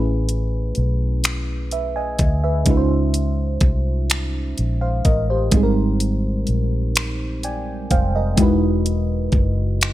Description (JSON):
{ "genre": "slow six-eight R&B", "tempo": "42 BPM (dotted quarters)", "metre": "6/8", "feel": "straight", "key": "unclear", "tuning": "A4 = 440 Hz", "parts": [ { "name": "mellow FM electric piano", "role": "accompaniment", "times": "0.0-9.9 s", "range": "G3 to G#5", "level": "-22 LUFS", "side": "right 1 dB", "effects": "chorus, phaser" }, { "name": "vintage muted fingered electric bass", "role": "bass", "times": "0.0-9.9 s", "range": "E1 to D2", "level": "-21 LUFS", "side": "equal", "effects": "none" }, { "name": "smooth R&B drum kit", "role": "drums", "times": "0.3-9.9 s", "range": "finger snaps, hi-hat, kick drum", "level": "-19 LUFS", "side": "equal", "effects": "none" } ], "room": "little or no reverb", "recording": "none", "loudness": "-17 LUFS", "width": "side -14 dB against mid", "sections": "0.0-9.9 A section", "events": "FM electric piano fill 6.9-8.4", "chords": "0.0 Amaj9; 2.7 Dbmaj9; 5.5 Abmaj9; 8.4 Emaj9", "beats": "1.23 | 2.66 4.09 | 5.52 6.95 | 8.38 9.80" }